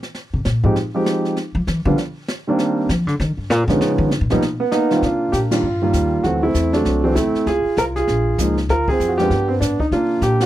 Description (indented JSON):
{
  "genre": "jazz piano trio",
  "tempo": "197 BPM",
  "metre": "4/4",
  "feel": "swing 61% on 8ths",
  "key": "unclear",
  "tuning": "A4 = 435 Hz",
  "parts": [
    { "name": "jazz brush drum kit", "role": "drums", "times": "0.0-10.5 s", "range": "brushed snare drum, hi-hat, kick drum, ride cymbal, snare drum", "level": "-27 LUFS", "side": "equal", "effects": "none" },
    { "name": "upright bass", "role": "bass", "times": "0.3-10.5 s", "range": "Bb1 to F3", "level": "-20 LUFS", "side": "left 1 dB", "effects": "none" },
    { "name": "warm grand piano", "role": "melody", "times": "0.6-10.5 s", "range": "Eb3 to Bb4", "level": "-17 LUFS", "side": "right 1 dB", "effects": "none" }
  ],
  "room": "little or no reverb",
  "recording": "dry, close 1970s-style studio recording",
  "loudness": "-16 LUFS",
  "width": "side -13 dB against mid",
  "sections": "0.0-5.0 A section; 5.0-10.5 B section",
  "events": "upright bass solo 0.0-5.0; band accent 5.5",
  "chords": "0.1 Fm7; 1.4 Dmadd9; 2.0 N.C.; 2.6 Cm9; 3.8 Db9; 4.4 Gaug (rootless); 5.0 Cm9; 6.2 D9; 7.5 Db6; 8.7 Dm7b5; 9.3 G; 9.9 Csus2",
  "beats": "| 0.15 0.45 0.76 1.06 | 1.37 1.67 1.98 2.28 | 2.59 2.89 3.19 3.50 | 3.80 4.11 4.41 4.72 | 5.02 5.33 5.63 5.94 | 6.24 6.55 6.86 7.16 | 7.47 7.77 8.08 8.38 | 8.69 8.99 9.30 9.61 | 9.91 10.22"
}